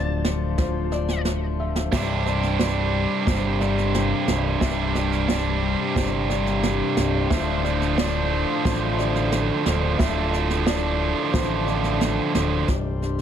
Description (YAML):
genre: post-rock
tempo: 89 BPM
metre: 4/4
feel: straight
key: unclear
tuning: A4 = 440 Hz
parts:
  - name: octave-fuzz lead guitar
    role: melody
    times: 0.0-1.2 s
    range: A5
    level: -37 LUFS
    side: left 5 dB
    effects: distortion, digital delay
  - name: hand-pumped harmonium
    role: sustained chords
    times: 0.0-13.2 s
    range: F3 to D5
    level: -32 LUFS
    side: left 5 dB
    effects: none
  - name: felt-muted upright piano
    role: arpeggios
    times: 0.0-12.3 s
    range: C5 to E5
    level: -34 LUFS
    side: left 1 dB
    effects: digital delay
  - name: twelve-string electric guitar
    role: arpeggios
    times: 0.0-13.2 s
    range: C2 to D4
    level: -29 LUFS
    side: left 6 dB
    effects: digital delay
  - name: growling picked electric bass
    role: bass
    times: 0.0-13.2 s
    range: C1 to A1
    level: -26 LUFS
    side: equal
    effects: overdrive
  - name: jazz brush drum kit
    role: drums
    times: 0.2-13.2 s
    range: crash cymbal, kick drum, snare drum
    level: -26 LUFS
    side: right 1 dB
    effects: none
  - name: tight distorted guitar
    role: riff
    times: 1.9-12.7 s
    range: C2 to D4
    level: -24 LUFS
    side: right 7 dB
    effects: distortion
room: light reverb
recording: none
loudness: -20 LUFS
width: side -9 dB against mid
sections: 0.0-1.9 A section; 1.9-12.7 B section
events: none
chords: 0.0 Dm7; 1.9 Csus2; 7.3 Dm7; 12.7 Csus2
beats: 0.58 1.26 | 1.93 2.60 3.27 3.94 | 4.62 5.29 5.96 6.63 | 7.31 7.98 8.65 9.32 | 9.99 10.67 11.34 12.01 | 12.69